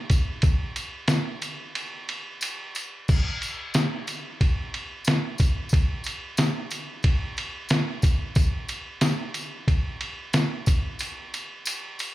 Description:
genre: rock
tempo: 91 BPM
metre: 4/4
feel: straight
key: none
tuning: none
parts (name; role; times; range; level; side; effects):
- lo-fi sampler-style drum kit; drums; 0.1-12.1 s; crash cymbal, kick drum, ride cymbal, snare drum; -24 LUFS; equal; none
- tambourine; percussion; 0.1-12.1 s; none; -37 LUFS; left 1 dB; none
room: light reverb, digital ambience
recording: live gig heard through the venue's PA, club reverb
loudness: -24 LUFS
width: side -16 dB against mid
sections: 0.0-12.1 A section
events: break 1.8-3.1, 11.0-12.1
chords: none

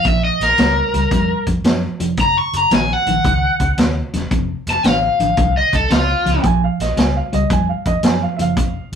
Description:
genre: electric blues shuffle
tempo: 113 BPM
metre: 4/4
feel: swing 67% on 8ths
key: Bb minor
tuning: A4 = 440 Hz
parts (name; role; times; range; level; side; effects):
- raw garage guitar; melody; 0.0-6.4 s; F4 to Db6; -16 LUFS; left 1 dB; overdrive
- electric guitar through a small old amp; riff; 0.0-9.0 s; F2 to G3; -23 LUFS; left 1 dB; none
- vintage muted fingered electric bass; bass; 0.0-9.0 s; E1 to Gb2; -21 LUFS; equal; none
- vintage drum kit; drums; 0.0-9.0 s; hi-hat, kick drum, snare drum; -19 LUFS; equal; none
- warm upright piano; second line; 6.4-8.9 s; Eb5 to Ab5; -22 LUFS; right 6 dB; none
room: moderate studio reverb, RT60 0.5 s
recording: rough rehearsal-room recording, warm saturation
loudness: -14 LUFS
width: side -8 dB against mid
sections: 0.0-9.0 A section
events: none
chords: 0.0 Bbm; 2.2 Gb; 4.3 F; 6.4 Bbm

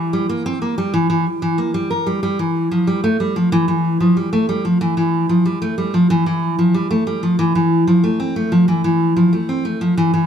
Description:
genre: folktronica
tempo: 93 BPM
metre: 4/4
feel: straight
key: unclear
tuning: A4 = 445 Hz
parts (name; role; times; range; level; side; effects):
- fingerpicked steel-string acoustic guitar; solo; 0.0-10.3 s; E3 to Bb4; -15 LUFS; equal; none
room: wet small room reverb, RT60 0.5 s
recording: none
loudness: -15 LUFS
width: side -8 dB against mid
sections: 0.0-10.3 A section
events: none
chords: none

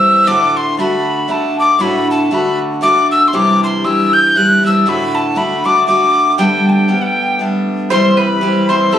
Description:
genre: celtic folk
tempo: 118 BPM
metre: 3/4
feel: swing 55% on 8ths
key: unclear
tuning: A4 = 441 Hz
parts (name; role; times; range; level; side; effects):
- breathy mid whistle; melody; 0.0-9.0 s; F#5 to G6; -13 LUFS; left 1 dB; none
- picked steel-string acoustic guitar; accompaniment; 0.0-9.0 s; D2 to G4; -14 LUFS; equal; none
- mandolin; second line; 7.9-9.0 s; A4 to C5; -16 LUFS; right 1 dB; none
room: moderate studio reverb, RT60 0.5 s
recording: recorded on a phone in the room, club reverb, compression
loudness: -11 LUFS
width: side -10 dB against mid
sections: 0.0-7.9 A section; 7.9-9.0 B section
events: none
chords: 0.3 D; 3.3 Cadd9; 4.8 D; 6.4 Gadd9; 7.9 C

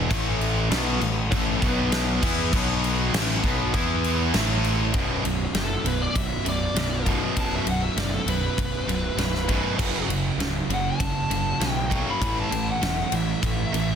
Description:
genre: hard rock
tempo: 99 BPM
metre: 4/4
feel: straight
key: unclear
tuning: A4 = 439 Hz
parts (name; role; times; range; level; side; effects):
- crunchy overdriven guitar; riff; 0.0-14.0 s; B1 to E4; -31 LUFS; right 2 dB; none
- overdriven semi-hollow guitar; riff; 0.0-14.0 s; B1 to E4; -30 LUFS; left 10 dB; spring reverb
- tight distorted guitar; riff; 0.0-14.0 s; B1 to E4; -30 LUFS; right 12 dB; distortion
- fuzz picked electric bass; bass; 0.0-13.9 s; B0 to E2; -28 LUFS; equal; overdrive
- huge arena drum kit; drums; 0.1-13.9 s; crash cymbal, kick drum, ride cymbal, snare drum; -27 LUFS; equal; none
- smooth overdriven lead guitar; melody; 5.6-14.0 s; A4 to B5; -29 LUFS; left 1 dB; none
room: light reverb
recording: dense, heavily limited modern master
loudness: -22 LUFS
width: side -8 dB against mid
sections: 0.0-4.9 A section; 4.9-14.0 B section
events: lead electric guitar solo 4.9-14.0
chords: 0.1 A5; 1.6 B5; 2.2 E5; 2.5 B5; 3.1 A5; 3.7 E5; 4.3 A5; 4.9 B5; 9.8 F#m; 12.2 A5

